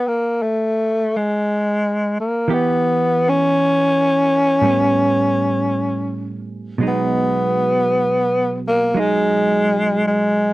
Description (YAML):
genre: jazz ballad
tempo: 56 BPM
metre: 4/4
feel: swing 69% on 8ths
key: unclear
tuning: A4 = 440 Hz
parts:
  - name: growling tenor saxophone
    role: melody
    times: 0.0-10.5 s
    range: G#3 to C#4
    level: -16 LUFS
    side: left 1 dB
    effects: none
  - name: hollow-body jazz guitar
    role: accompaniment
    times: 0.0-10.5 s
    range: A2 to G4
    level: -22 LUFS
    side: right 3 dB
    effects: none
room: little or no reverb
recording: dry, close 1970s-style studio recording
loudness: -15 LUFS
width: side -18 dB against mid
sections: 0.0-10.5 A section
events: none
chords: 0.0 N.C.; 2.5 Em; 4.6 A9; 6.8 B6